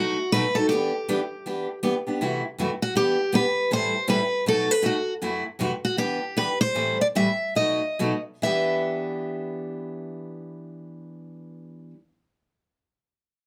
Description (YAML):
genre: jazz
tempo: 135-159 BPM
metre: 4/4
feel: swing 61% on 8ths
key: E minor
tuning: A4 = 440 Hz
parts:
  - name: picked steel-string acoustic guitar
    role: melody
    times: 0.0-11.9 s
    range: F#4 to E5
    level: -26 LUFS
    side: equal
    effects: none
  - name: picked steel-string acoustic guitar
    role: accompaniment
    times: 0.0-12.0 s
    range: F#2 to A4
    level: -30 LUFS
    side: equal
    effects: none
room: light reverb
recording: close, detailed microphones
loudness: -25 LUFS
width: mono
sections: 0.0-2.2 A section; 2.2-8.4 B section; 8.4-12.0 C section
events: slowing down 5.2-8.4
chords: 0.0 B7; 0.7 Em7; 2.2 F#m7b5; 3.0 Em7; 3.7 Am9; 4.5 B7; 5.2 F#m7b5; 6.0 Em7; 6.8 Am7; 7.6 B7; 8.4 Em7